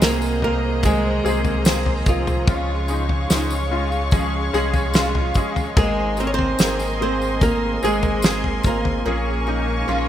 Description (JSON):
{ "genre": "pop ballad", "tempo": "73 BPM", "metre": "4/4", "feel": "straight", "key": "unclear", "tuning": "A4 = 441 Hz", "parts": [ { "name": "flamenco guitar", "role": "melody", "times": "0.0-10.1 s", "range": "F3 to Db5", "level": "-24 LUFS", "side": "right 1 dB", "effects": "none" }, { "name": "clear baby grand piano", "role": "accompaniment", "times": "0.0-10.1 s", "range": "Ab2 to Bb4", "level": "-24 LUFS", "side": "left 2 dB", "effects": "ensemble chorus" }, { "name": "rich studio string section", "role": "sustained chords", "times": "0.0-10.1 s", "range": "Ab4 to Db6", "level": "-29 LUFS", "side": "equal", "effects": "none" }, { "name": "picked steel-string acoustic guitar", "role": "arpeggios", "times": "0.0-10.1 s", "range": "Bb2 to Bb4", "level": "-32 LUFS", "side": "right 4 dB", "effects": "lush chorus" }, { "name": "sub bass with octave", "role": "bass", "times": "0.0-10.1 s", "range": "Ab1 to Db2", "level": "-25 LUFS", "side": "equal", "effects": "none" }, { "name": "loose indie drum kit", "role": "drums", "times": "0.0-9.0 s", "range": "kick drum, snare drum, toms", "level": "-20 LUFS", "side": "equal", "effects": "gated reverb" }, { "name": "tambourine", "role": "percussion", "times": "0.0-8.8 s", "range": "none", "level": "-34 LUFS", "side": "left 6 dB", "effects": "none" } ], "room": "light reverb", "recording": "bright 1980s-style digital production", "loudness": "-18 LUFS", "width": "side -11 dB against mid", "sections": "0.0-10.1 A section", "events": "none", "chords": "0.0 Abadd9/C; 2.5 Db; 5.8 Abadd9; 9.1 Bbm7" }